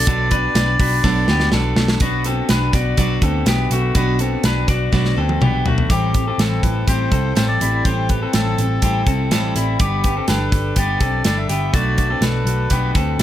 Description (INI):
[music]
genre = jangly indie pop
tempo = 123 BPM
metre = 4/4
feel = straight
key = unclear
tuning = A4 = 444 Hz
[part]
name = melodica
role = melody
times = 0.0-1.5, 5.9-12.9 s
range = G4 to E5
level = -24 LUFS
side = left 1 dB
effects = none
[part]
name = picked steel-string acoustic guitar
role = accompaniment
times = 0.0-13.2 s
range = A2 to B4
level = -24 LUFS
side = right 4 dB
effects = none
[part]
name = electric guitar through a small old amp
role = arpeggios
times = 0.0-13.2 s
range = G3 to D5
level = -23 LUFS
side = left 4 dB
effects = none
[part]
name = vintage muted picked electric bass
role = bass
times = 0.0-13.2 s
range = G1 to D2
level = -20 LUFS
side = equal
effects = none
[part]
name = modern studio drum kit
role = drums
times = 0.1-13.2 s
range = hi-hat, kick drum, snare drum, toms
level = -20 LUFS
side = equal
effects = none
[sound]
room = little or no reverb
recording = none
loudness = -15 LUFS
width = side -12 dB against mid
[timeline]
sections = 0.0-2.0 A section; 2.0-5.9 B section; 5.9-13.2 C section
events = drum fill 1.0-2.0, 4.9-5.9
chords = 0.0 Bm; 5.9 Am7; 9.8 G; 11.7 Bm7